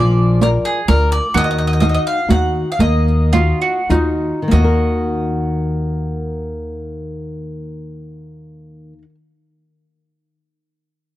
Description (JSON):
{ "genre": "italian folk, Italian serenade", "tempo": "93-130 BPM", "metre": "3/4", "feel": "straight", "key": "Eb harmonic minor", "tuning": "A4 = 439 Hz", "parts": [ { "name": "bowl-back mandolin", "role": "melody", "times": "0.0-9.0 s", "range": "Ab4 to Gb5", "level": "-22 LUFS", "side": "equal", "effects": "none" }, { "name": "bowl-back mandolin", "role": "second line", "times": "0.0-9.0 s", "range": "Eb4 to Ab4", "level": "-24 LUFS", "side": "right 3 dB", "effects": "none" }, { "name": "flamenco guitar", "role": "accompaniment", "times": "0.0-9.1 s", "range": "Eb3 to F5", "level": "-20 LUFS", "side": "left 2 dB", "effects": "none" }, { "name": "upright bass", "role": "bass", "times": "0.0-9.0 s", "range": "Bb1 to Eb2", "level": "-17 LUFS", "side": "equal", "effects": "none" }, { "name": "riq", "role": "percussion", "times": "0.4-4.8 s", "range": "none", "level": "-19 LUFS", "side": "right 6 dB", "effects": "none" } ], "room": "little or no reverb", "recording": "dry, close 1970s-style studio recording", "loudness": "-14 LUFS", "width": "side -14 dB against mid", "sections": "0.0-4.5 A section; 4.5-8.3 B section", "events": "slowing down 1.3-4.5", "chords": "0.0 Bb; 1.3 Ebmadd9; 4.5 Ebm" }